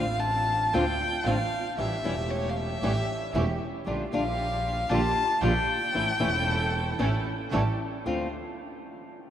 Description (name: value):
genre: tango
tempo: 115 BPM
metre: 4/4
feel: rubato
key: D harmonic minor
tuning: A4 = 440 Hz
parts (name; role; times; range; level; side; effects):
- rich violin; second line; 0.0-7.5 s; C#5 to A5; -29 LUFS; left 2 dB; none
- nylon-string guitar; accompaniment; 0.0-8.3 s; D3 to F4; -31 LUFS; left 2 dB; none
- warm studio string section; stabs; 0.0-8.3 s; A3 to C5; -34 LUFS; right 4 dB; none
- clear double bass; bass; 0.0-8.3 s; E1 to D2; -30 LUFS; right 1 dB; none
room: wet cathedral reverb, RT60 6.1 s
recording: in a vast, echoing space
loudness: -25 LUFS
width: side -10 dB against mid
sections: 0.0-8.1 A section; 8.1-9.3 B section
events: violin solo 0.0-8.1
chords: 0.0 Dm7; 1.8 A7; 3.9 Gm7/Bb; 5.9 A; 7.5 A7; 8.1 Dm7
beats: 0.21 0.74 1.26 | 1.78 2.31 2.83 3.35 | 3.87 4.39 4.90 5.42 | 5.94 6.46 6.99 7.52 | 8.06